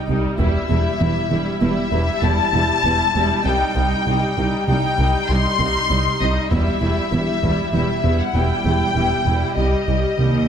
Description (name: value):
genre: cinematic, hybrid orchestral and electronic film score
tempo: 98 BPM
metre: 5/4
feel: straight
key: E harmonic minor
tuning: A4 = 440 Hz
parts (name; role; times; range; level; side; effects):
- rich symphonic violin section; melody; 0.0-10.5 s; Eb5 to C6; -22 LUFS; left 4 dB; none
- rich symphonic viola section; accompaniment; 0.0-10.5 s; G3 to G4; -24 LUFS; equal; none
- round analog bass; riff; 0.1-10.4 s; C2 to E3; -23 LUFS; equal; none
- clear symphonic double bass section; bass; 0.1-10.3 s; E1 to C2; -24 LUFS; right 3 dB; none
- rich symphonic cello section; bass; 0.1-10.5 s; C2 to E2; -25 LUFS; right 2 dB; none
- solo taiko drums; drums; 0.4-1.6, 6.5-7.7 s; none; -28 LUFS; left 1 dB; none
room: wet scoring stage reverb, RT60 1.6 s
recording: none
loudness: -16 LUFS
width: side -8 dB against mid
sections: 0.0-10.5 A section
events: none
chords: 0.4 Em; 3.5 Cm; 6.5 Em; 9.6 Cm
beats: | 0.39 1.00 1.62 2.23 2.84 | 3.45 4.07 4.68 5.29 5.90 | 6.51 7.13 7.74 8.35 8.96 | 9.58 10.19